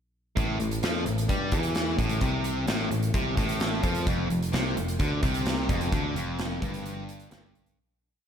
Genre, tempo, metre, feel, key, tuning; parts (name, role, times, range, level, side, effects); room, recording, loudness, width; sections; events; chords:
classic rock; 130 BPM; 4/4; straight; A minor; A4 = 438 Hz
distorted electric guitar; riff; 0.4-7.8 s; F2 to G3; -29 LUFS; equal; overdrive
picked electric bass; bass; 0.4-7.7 s; F1 to G2; -31 LUFS; equal
big rock drum kit; drums; 0.4-7.8 s; hi-hat, kick drum, snare drum; -29 LUFS; equal
light reverb, small room ambience; -25 LUFS; side -8 dB against mid
0.4-7.8 riff
fade-out 5.9-7.8
0.4 Am; 4.1 F5